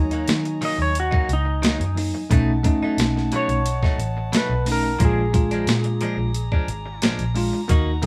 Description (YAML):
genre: straight-eighth soul blues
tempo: 89 BPM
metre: 4/4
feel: straight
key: unclear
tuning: A4 = 440 Hz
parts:
  - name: clean lap steel guitar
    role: melody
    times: 0.0-7.0 s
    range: Eb4 to Eb5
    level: -29 LUFS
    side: equal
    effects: none
  - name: bell-like tine electric piano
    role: accompaniment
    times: 0.0-8.1 s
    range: Gb3 to Gb4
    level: -27 LUFS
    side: equal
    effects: none
  - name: clear horn section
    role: sustained chords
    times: 0.0-8.1 s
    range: D5 to Bb5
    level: -38 LUFS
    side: equal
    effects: none
  - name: vintage muted fingered electric bass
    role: bass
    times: 0.0-8.0 s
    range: Ab1 to Eb3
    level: -26 LUFS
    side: equal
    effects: none
  - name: direct-recorded clean electric guitar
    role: stabs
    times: 0.1-8.1 s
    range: Bb2 to Gb4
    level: -32 LUFS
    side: equal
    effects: none
  - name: boom bap sampler-style drum kit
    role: drums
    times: 0.1-8.1 s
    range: hi-hat, kick drum, snare drum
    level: -24 LUFS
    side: equal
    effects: none
room: moderate studio reverb, RT60 0.6 s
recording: band playing live in one room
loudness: -21 LUFS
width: mono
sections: 0.0-8.1 A section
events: electric slide guitar solo 0.0-8.1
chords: 0.0 Ebm; 2.3 B7; 5.0 Bb7